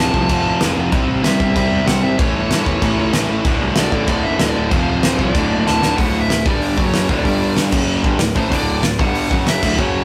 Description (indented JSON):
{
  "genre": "punk rock",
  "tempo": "190 BPM",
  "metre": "4/4",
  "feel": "straight",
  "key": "D mixolydian",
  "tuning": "A4 = 440 Hz",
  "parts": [
    { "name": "high-gain lead guitar", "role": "melody", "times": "0.0-10.0 s", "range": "C5 to A5", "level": "-25 LUFS", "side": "equal", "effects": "distortion" },
    { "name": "biting overdriven guitar", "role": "riff", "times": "0.0-10.0 s", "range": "D2 to C4", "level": "-26 LUFS", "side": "equal", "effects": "none" },
    { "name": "crunchy overdriven guitar", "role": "riff", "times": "0.0-10.0 s", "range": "D2 to C4", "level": "-25 LUFS", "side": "equal", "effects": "none" },
    { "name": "distorted electric guitar", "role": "riff", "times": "0.0-10.0 s", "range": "D2 to C4", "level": "-24 LUFS", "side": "equal", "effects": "overdrive" },
    { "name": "fuzz picked electric bass", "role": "bass", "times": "0.0-10.0 s", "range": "D1 to C#2", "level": "-26 LUFS", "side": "equal", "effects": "overdrive" },
    { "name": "loose indie drum kit", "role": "drums", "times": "0.1-9.9 s", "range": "crash cymbal, hi-hat, kick drum, snare drum", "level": "-21 LUFS", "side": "equal", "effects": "none" }
  ],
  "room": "moderate studio reverb, RT60 0.5 s",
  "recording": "rough rehearsal-room recording, warm saturation",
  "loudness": "-17 LUFS",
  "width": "mono",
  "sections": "0.0-6.0 A section; 6.0-10.0 B section",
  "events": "drum fill 5.7-6.0",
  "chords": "0.0 F; 0.9 C; 2.2 A; 3.5 D5; 4.7 F5; 5.4 D; 6.5 G5; 6.8 F#5; 7.1 D5; 7.2 G5; 7.7 F#5; 8.0 D5; 9.0 G5; 9.3 F#5; 9.6 D5"
}